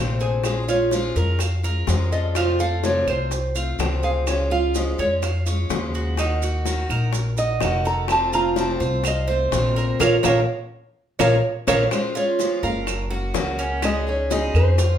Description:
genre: latin, Cuban son and guajira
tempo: 126 BPM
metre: 4/4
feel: straight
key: Bb minor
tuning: A4 = 440 Hz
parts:
  - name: picked steel-string acoustic guitar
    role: accompaniment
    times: 0.0-14.8 s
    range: C3 to Ab4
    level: -28 LUFS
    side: left 3 dB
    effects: none
  - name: Cuban tres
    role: arpeggios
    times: 0.0-15.0 s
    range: Db4 to F5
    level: -26 LUFS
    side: right 4 dB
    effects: none
  - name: upright bass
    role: bass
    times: 0.0-15.0 s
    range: F1 to F2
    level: -23 LUFS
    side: equal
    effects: none
  - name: nylon-string guitar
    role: melody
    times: 0.2-15.0 s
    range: Ab4 to Bb5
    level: -24 LUFS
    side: equal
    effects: slapback echo
  - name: bongos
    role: percussion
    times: 0.2-15.0 s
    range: none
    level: -30 LUFS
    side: left 6 dB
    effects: none
  - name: maracas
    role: percussion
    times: 0.2-15.0 s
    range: none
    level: -35 LUFS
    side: right 6 dB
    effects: none
  - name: claves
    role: percussion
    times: 0.4-14.8 s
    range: none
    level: -31 LUFS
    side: right 8 dB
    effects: none
room: wet large studio reverb, RT60 0.8 s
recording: band playing live in one room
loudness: -19 LUFS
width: side -9 dB against mid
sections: 0.0-11.9 A section; 11.9-15.0 B section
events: nylon-string guitar solo 0.0-11.9; band accent 10.0-11.9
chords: 0.4 Bbm7; 2.4 F; 4.3 Db; 6.2 Ebm; 8.1 F; 10.0 Bbm; 11.9 Bbm7; 12.9 Gb; 13.8 Dbsus2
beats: | 0.45 0.92 1.40 1.88 | 2.36 2.84 3.31 3.79 | 4.27 4.75 5.23 5.71 | 6.18 6.66 7.14 7.62 | 8.09 8.57 9.05 9.53 | 10.01 10.48 10.96 11.44 | 11.92 12.39 12.87 13.35 | 13.83 14.31 14.78

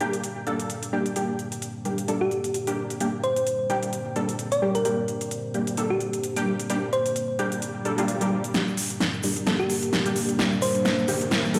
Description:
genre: bass house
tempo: 130 BPM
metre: 4/4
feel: swing 56% on 16ths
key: G minor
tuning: A4 = 438 Hz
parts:
  - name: dark analog pad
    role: sustained chords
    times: 0.0-11.6 s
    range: G3 to C5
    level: -34 LUFS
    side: equal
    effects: chorus
  - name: orchestra-hit-like synth stab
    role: stabs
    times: 0.0-11.6 s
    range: G3 to A4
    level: -30 LUFS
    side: equal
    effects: built-in reverb, phaser, delay
  - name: big-room dance drum kit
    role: drums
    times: 0.0-11.6 s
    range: hi-hat, snare drum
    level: -31 LUFS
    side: equal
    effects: none
  - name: thumb-piano-like synth pluck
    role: melody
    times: 2.2-10.7 s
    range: G4 to D5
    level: -30 LUFS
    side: equal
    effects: chorus, delay
  - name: swell and riser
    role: sound effects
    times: 7.7-11.6 s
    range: none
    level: -37 LUFS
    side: equal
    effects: none
  - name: egg shaker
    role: percussion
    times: 8.5-11.6 s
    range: none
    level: -42 LUFS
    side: equal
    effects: none
room: moderate plate reverb, RT60 2.0 s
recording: played on a big sound system in a bare room, large studio reverb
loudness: -26 LUFS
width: mono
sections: 0.0-8.5 A section; 8.5-11.6 B section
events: filter sweep on analog synth pad 0.0-8.5; swell 7.7-8.5; build-up 8.5-11.6; drum fill 8.5-11.6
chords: 0.0 Gm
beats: 0.24 0.70 | 1.16 1.62 2.08 2.54 | 3.01 3.47 3.93 4.39 | 4.85 5.31 5.78 6.24 | 6.70 7.16 7.62 8.08 | 8.54 9.01 9.47 9.93 | 10.39 10.85 11.31

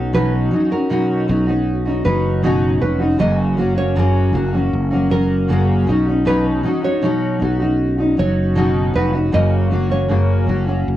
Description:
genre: acoustic pop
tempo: 78 BPM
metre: 4/4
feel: straight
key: unclear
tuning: A4 = 439 Hz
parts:
  - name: fingerpicked steel-string acoustic guitar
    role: accompaniment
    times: 0.0-11.0 s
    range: F#2 to F#4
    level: -17 LUFS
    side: equal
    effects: double-tracked left and right, cassette tape
  - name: sustaining fretless electric bass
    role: bass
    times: 0.0-11.0 s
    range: E#1 to B1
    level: -20 LUFS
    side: equal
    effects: none
  - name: nylon-string guitar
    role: arpeggios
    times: 0.1-10.5 s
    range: A#4 to D#5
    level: -23 LUFS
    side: right 2 dB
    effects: cassette tape, plate reverb
room: moderate booth ambience, RT60 0.3 s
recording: home recording on cassette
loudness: -15 LUFS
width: side -13 dB against mid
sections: 0.0-11.0 A section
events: none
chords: 0.0 Badd9; 3.2 F#; 5.9 Badd9; 9.3 F#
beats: | 0.14 0.91 1.67 2.44 | 3.21 3.97 4.74 5.50 | 6.27 7.04 7.80 8.57 | 9.34 10.11 10.87

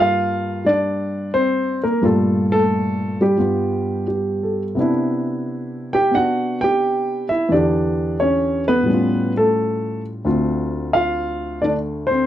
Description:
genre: solo jazz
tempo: 88 BPM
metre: 4/4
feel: swing 69% on 8ths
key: unclear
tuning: A4 = 440 Hz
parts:
  - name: dark grand piano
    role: solo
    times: 0.0-12.3 s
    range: D2 to G5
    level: -17 LUFS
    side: equal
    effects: slapback echo
room: moderate booth ambience, RT60 0.2 s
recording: dry, close 1970s-style studio recording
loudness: -17 LUFS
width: side -12 dB against mid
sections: 0.0-4.8 A section; 4.8-12.3 B section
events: none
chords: 0.0 Gm7; 3.4 G7; 4.8 Cmaj9; 7.5 Em7; 8.9 A7b13; 10.2 Dm7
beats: 0.66 1.34 | 2.03 2.71 3.40 4.08 | 4.77 5.45 6.14 6.82 | 7.51 8.19 8.88 9.56 | 10.25 10.93 11.62

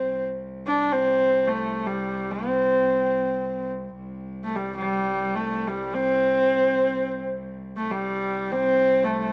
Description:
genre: mongolian traditional, Mongolian folk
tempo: free time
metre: none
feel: none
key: unclear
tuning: A4 = 440 Hz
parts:
  - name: bright horsehead fiddle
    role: melody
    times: 0.0-9.3 s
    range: G3 to D4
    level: -24 LUFS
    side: equal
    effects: cassette tape
  - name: clear cello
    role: drone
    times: 0.0-9.3 s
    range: C2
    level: -37 LUFS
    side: equal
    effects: cassette tape
room: wet spring reverb, RT60 2.0 s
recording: home recording on cassette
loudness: -24 LUFS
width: mono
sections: 0.0-9.3 A section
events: none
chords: none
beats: free time

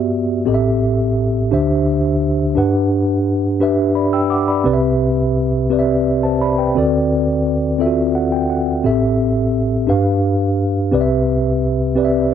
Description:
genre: gospel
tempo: 57 BPM (dotted quarters)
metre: 6/8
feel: straight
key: G major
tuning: A4 = 440 Hz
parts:
  - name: mellow tine electric piano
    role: solo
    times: 0.0-12.3 s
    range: A1 to E6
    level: -14 LUFS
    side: equal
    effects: medium stereo tremolo
room: little or no reverb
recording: dry, close 1970s-style studio recording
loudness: -14 LUFS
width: side -9 dB against mid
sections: 0.0-12.3 A section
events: tine electric piano fill 7.8-8.8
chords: 0.5 Am7; 1.5 D9sus4; 2.6 Gmaj7; 4.7 Cmaj7; 6.8 D7; 8.8 Am7; 9.9 G7; 10.9 Cmaj7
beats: | 0.47 1.52 | 2.57 3.61 | 4.66 5.71 | 6.75 7.79 | 8.84 9.88 | 10.93 11.97

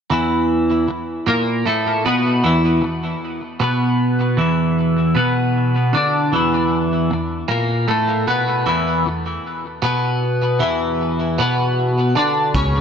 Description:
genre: psychedelic rock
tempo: 77 BPM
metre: 4/4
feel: straight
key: unclear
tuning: A4 = 440 Hz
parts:
  - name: twelve-string electric guitar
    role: riff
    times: 0.1-12.8 s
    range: E2 to D4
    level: -16 LUFS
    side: equal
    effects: phaser, double-tracked left and right, tape echo
  - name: raw garage drum kit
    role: drums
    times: 12.5-12.7 s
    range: hi-hat, kick drum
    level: -22 LUFS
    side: equal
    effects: none
  - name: fingered electric bass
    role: bass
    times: 12.6-12.8 s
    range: C#2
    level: -18 LUFS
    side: equal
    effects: none
room: moderate echo chamber reverb, RT60 1.8 s, studio reverb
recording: echo-heavy mix, nothing above 7.9 kHz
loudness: -16 LUFS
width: side -7 dB against mid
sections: 0.1-12.8 A section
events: none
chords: 0.1 E5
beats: | 0.10 0.88 1.66 2.44 | 3.22 3.99 4.77 5.55 | 6.33 7.11 7.88 8.66 | 9.44 10.22 11.00 11.78 | 12.55

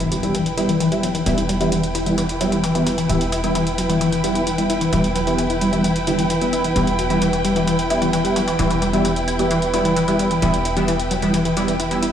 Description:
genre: driving peak-time techno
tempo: 131 BPM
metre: 4/4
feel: straight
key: E minor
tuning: A4 = 442 Hz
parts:
  - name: resonant blip pluck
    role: riff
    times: 0.0-12.1 s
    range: D3 to E4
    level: -22 LUFS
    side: left 2 dB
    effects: chorus, phaser, overdrive, digital delay
  - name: tight sequencer bass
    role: bass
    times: 0.0-12.1 s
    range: E1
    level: -28 LUFS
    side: equal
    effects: none
  - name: electronic hi-hat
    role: drums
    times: 0.0-12.1 s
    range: none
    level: -28 LUFS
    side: equal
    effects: none
  - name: impact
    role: sound effects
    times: 0.0-1.3 s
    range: none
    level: -31 LUFS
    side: equal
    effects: none
  - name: dark chamber string section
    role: texture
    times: 0.0-12.1 s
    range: E4 to G5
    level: -23 LUFS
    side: right 2 dB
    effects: none
  - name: rave stab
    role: stabs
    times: 0.2-12.1 s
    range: G3 to E4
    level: -22 LUFS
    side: equal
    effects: chorus, built-in reverb, vintage 12-bit sampler grit, tape echo
room: moderate plate reverb, RT60 1.8 s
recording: played on a big sound system in a bare room, stone room reverb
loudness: -17 LUFS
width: side -9 dB against mid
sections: 0.0-12.1 A section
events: impact 0.0-1.3; filter sweep on synth stab 0.0-12.1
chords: 0.0 Em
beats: 0.35 0.80 | 1.26 1.72 2.18 2.64 | 3.10 3.55 4.01 4.47 | 4.93 5.38 5.84 6.30 | 6.76 7.22 7.67 8.13 | 8.59 9.05 9.51 9.96 | 10.42 10.88 11.34 11.80

